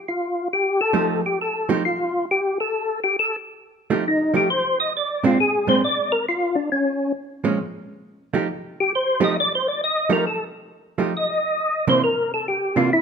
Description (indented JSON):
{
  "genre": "jazz",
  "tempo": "135 BPM",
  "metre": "4/4",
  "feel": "swing 68% on 8ths",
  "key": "F mixolydian",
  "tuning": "A4 = 439 Hz",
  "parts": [
    { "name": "percussive tonewheel organ", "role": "melody", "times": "0.1-13.0 s", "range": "Db4 to Eb5", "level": "-20 LUFS", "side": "left 1 dB", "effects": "slow rotary speaker, chorus vibrato" },
    { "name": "hollow-body jazz guitar", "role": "accompaniment", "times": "0.9-12.9 s", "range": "Bb2 to G4", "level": "-22 LUFS", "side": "right 4 dB", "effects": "none" }
  ],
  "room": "moderate large studio reverb, RT60 1.5 s",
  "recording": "minimal, uncompressed stereo recording",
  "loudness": "-19 LUFS",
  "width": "side -6 dB against mid",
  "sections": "0.0-13.0 A section",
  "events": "tonewheel organ solo 0.0-13.0",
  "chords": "0.0 F9; 4.9 Bb9; 6.7 Bbm7; 8.5 F9; 12.0 C9"
}